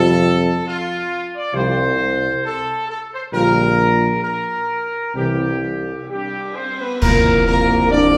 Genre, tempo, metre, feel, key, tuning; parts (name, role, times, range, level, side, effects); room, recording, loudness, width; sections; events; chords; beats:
classical, ceremonial fanfare; 67 BPM; 4/4; straight; A4 = 439 Hz
clear trumpet section; melody; 0.0-8.2 s; F4 to D5; -22 LUFS; equal
mellow French horn section; sustained chords; 0.0-8.2 s; G3 to F4; -24 LUFS; equal
warm trombone section; sustained chords; 0.0-8.2 s; C3 to Bb3; -27 LUFS; equal
warm tuba; bass; 0.0-8.2 s; Bb1 to F2; -22 LUFS; equal
cymbal swell, clash cymbals and concert bass drum; percussion; 3.3-8.2 s; -24 LUFS; equal
wet recital hall reverb, RT60 1.5 s; recorded in a church or concert hall; -19 LUFS; mono
0.0-7.0 A section; 7.0-8.2 B section
band accent 7.0-7.9
0.0 Fadd9; 3.3 Bb6; 5.2 C; 7.0 Bb/C
0.67 1.55 2.44 | 3.34 4.24 5.16 6.09 | 7.03 7.92